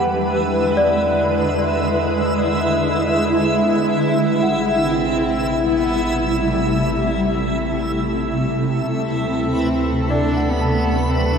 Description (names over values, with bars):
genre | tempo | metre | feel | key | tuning
ambient | 74 BPM | 3/4 | straight | unclear | A4 = 440 Hz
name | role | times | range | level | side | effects
dark cello | melody | 0.0-11.4 s | G3 to D4 | -27 LUFS | right 1 dB | diffuse ambient delay
shimmering ambient pad | sustained chords | 0.0-11.4 s | C3 to B4 | -19 LUFS | equal | chorus, built-in reverb
celesta | arpeggios | 0.0-11.4 s | D5 to A5 | -25 LUFS | equal | diffuse ambient delay
warm sub bass | bass | 0.0-11.4 s | A1 to E2 | -27 LUFS | equal | none
backwards swelling texture | texture | 0.0-11.4 s | E4 to B5 | -24 LUFS | equal | built-in reverb
room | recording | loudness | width
wet huge ambient reverb, RT60 8.4 s | none | -16 LUFS | side -6 dB against mid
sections
0.0-11.4 A section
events
fade-in on sub bass 0.0-11.4; fade-in on cello 0.0-11.4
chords
0.0 E7; 4.0 Am7; 8.9 D7